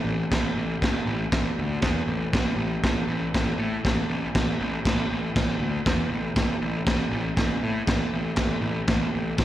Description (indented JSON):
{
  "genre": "garage rock duo or trio",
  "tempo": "119 BPM",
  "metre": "4/4",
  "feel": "straight",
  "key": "unclear",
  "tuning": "A4 = 440 Hz",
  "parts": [
    { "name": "fuzz picked electric bass", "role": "bass", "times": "0.0-9.4 s", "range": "A1 to A2", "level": "-26 LUFS", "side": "equal", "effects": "overdrive" },
    { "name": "crunchy breakbeat drum kit", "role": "drums", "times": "0.3-9.4 s", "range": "crash cymbal, kick drum, snare drum", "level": "-25 LUFS", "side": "equal", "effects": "slapback echo" }
  ],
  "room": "little or no reverb",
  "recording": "live gig heard through the venue's PA, recital hall reverb",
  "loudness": "-23 LUFS",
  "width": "side -13 dB against mid",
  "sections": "0.0-9.4 A section",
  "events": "none",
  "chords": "none",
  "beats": "| 0.32 0.82 1.32 1.83 | 2.33 2.83 3.34 3.84 | 4.34 4.84 5.35 5.85 | 6.36 6.86 7.36 7.86 | 8.37 8.87 9.37"
}